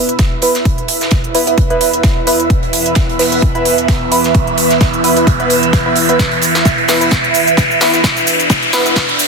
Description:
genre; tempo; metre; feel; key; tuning
bass house; 130 BPM; 4/4; swing 55% on 16ths; unclear; A4 = 441 Hz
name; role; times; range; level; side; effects
deep dark ambient pad; sustained chords; 0.0-9.3 s; E3 to E5; -23 LUFS; right 1 dB; chorus, built-in reverb, sidechain pumping
band-passed chord stab; stabs; 0.0-8.9 s; B3 to B4; -17 LUFS; equal; chorus, phaser, cassette tape, sidechain pumping, dub echo
riser; sound effects; 1.0-9.3 s; none; -18 LUFS; right 1 dB; none
airy breathy pad; texture; 0.0-9.3 s; E4 to E5; -17 LUFS; right 3 dB; chorus, phaser, sidechain pumping
big-room dance drum kit; drums; 0.1-9.3 s; hi-hat, shaker, snare drum; -17 LUFS; right 1 dB; high-pass filter on hats, high-pass filter on snare, high-pass filter on perc, high-pass filter on room
big rock drum kit; drums; 0.2-9.3 s; hi-hat, snare drum; -24 LUFS; right 3 dB; high-pass filter on hats, high-pass filter on snare, high-pass filter on room
electronic kick drum; drums; 0.2-9.1 s; none; -14 LUFS; equal; none
room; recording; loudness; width
light reverb; dense, heavily limited modern master, high-pass filter; -10 LUFS; side -4 dB against mid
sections
0.0-9.3 A section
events
build-up 0.0-9.3; filter sweep on synth stab 0.0-9.3; filter sweep on ambient pad 0.0-9.3; filter sweep 0.0-9.3; riser 1.0-9.3; drum fill 6.2-9.3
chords
0.0 E5

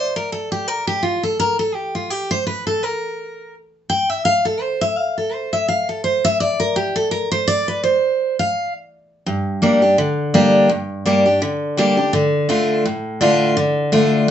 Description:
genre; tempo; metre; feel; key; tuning
bluegrass; 168 BPM; 4/4; swing 56% on 8ths; unclear; A4 = 440 Hz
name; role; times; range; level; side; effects
picked steel-string acoustic guitar; solo; 0.0-14.3 s; G2 to G5; -16 LUFS; equal; none
room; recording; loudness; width
moderate studio ambience, RT60 0.5 s; band playing live in one room, nothing above 8.0 kHz; -16 LUFS; side -10 dB against mid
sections
0.0-9.3 A section; 9.3-14.3 B section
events
steel-string acoustic guitar solo 0.0-9.3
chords
0.0 N.C.; 9.3 Gm; 12.1 Dm

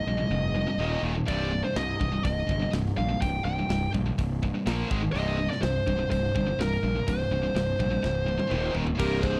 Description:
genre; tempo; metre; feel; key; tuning
heavy metal; 124 BPM; 4/4; straight; C minor; A4 = 440 Hz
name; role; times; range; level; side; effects
high-gain lead guitar; melody; 0.0-9.4 s; Bb4 to G5; -33 LUFS; equal; distortion, slapback echo
high-gain distorted guitar; riff; 0.0-9.4 s; C2 to Bb3; -35 LUFS; equal; distortion
tight distorted guitar; riff; 0.0-9.4 s; C2 to Bb3; -35 LUFS; equal; distortion
fuzz fingered electric bass; bass; 0.1-9.4 s; C1 to C2; -32 LUFS; equal; overdrive
tight metal drum kit; drums; 1.3-9.3 s; crash cymbal, hi-hat, kick drum, snare drum, toms; -34 LUFS; equal; none
high-gain lead guitar; second line; 9.0-9.4 s; G4 to Ab4; -35 LUFS; equal; distortion
room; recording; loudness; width
little or no reverb; dry, close 1970s-style studio recording; -27 LUFS; mono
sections
0.0-9.0 A section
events
drum fill 8.0-9.0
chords
0.0 Cm; 0.8 Eb5; 1.3 Cm; 4.7 Bb5; 4.9 Ab5; 5.1 C5; 8.5 Eb5

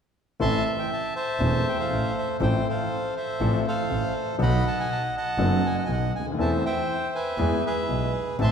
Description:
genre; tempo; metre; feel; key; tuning
tango; 120 BPM; 4/4; rubato; A minor; A4 = 439 Hz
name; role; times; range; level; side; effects
bandoneon; melody; 0.4-8.5 s; G#4 to C6; -27 LUFS; right 1 dB; none
clear concert grand piano; accompaniment; 0.4-8.5 s; E1 to A4; -26 LUFS; left 1 dB; none
clear double bass; bass; 0.4-8.5 s; E1 to E2; -28 LUFS; right 1 dB; none
room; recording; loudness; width
wet concert hall reverb, RT60 2.1 s; heard from further back in the room; -23 LUFS; side -7 dB against mid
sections
0.4-8.5 A section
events
none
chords
0.4 Am; 2.4 F/A; 4.4 B7; 6.4 Am/E; 7.4 E

